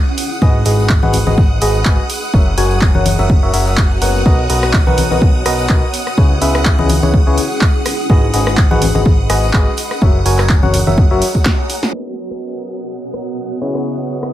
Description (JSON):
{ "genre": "piano house", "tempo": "125 BPM", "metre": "4/4", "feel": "swing 55% on 16ths", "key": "B major", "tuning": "A4 = 442 Hz", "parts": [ { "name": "string machine, violins", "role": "sustained chords", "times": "0.0-14.3 s", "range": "F#5 to D#6", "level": "-25 LUFS", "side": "equal", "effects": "ensemble chorus, sidechain pumping" }, { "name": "granular cloud pad", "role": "texture", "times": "0.0-14.3 s", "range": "B3 to B5", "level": "-25 LUFS", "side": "right 1 dB", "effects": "built-in reverb, sidechain pumping" }, { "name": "punchy analog drum machine", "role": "drums", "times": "0.2-14.3 s", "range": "crash cymbal, handclaps, hi-hat, rim click, snare drum", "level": "-20 LUFS", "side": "right 1 dB", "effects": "low-pass filter on snare, low-pass filter on hats, low-pass filter on cymbals, low-pass filter on room" }, { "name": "tambourine and congas", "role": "percussion", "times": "0.2-11.9 s", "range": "none", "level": "-22 LUFS", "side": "left 4 dB", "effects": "none" }, { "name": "barking FM electric piano", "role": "riff", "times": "0.4-14.3 s", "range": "C#3 to G#5", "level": "-19 LUFS", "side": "left 1 dB", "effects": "chorus, sidechain pumping, ping-pong delay" }, { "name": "fat analog bass", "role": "bass", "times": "0.4-11.2 s", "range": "F#1 to C#2", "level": "-16 LUFS", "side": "equal", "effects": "sidechain pumping" }, { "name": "electronic kick drum", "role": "drums", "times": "0.4-11.6 s", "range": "none", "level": "-12 LUFS", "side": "equal", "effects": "none" } ], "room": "digital ambience", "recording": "low-pass filter", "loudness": "-11 LUFS", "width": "side -13 dB against mid", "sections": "0.0-11.9 A section; 11.9-14.3 B section", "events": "drum fill 11.5-11.9; band accent 11.8; filter sweep on drum 11.9-14.3; filter sweep 11.9-14.3", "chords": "0.2 G#m7; 2.3 F#7; 4.3 Bmaj7; 5.9 C#m7; 7.9 G#m7; 10.0 F#7; 11.9 Bmaj7; 13.6 C#m7", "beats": "| 0.42 0.90 1.38 1.86 | 2.34 2.82 3.30 3.78 | 4.26 4.74 5.22 5.70 | 6.18 6.66 7.14 7.62 | 8.10 8.58 9.06 9.54 | 10.02 10.50 10.98 11.46 | 11.94 12.42 12.90 13.38 | 13.86" }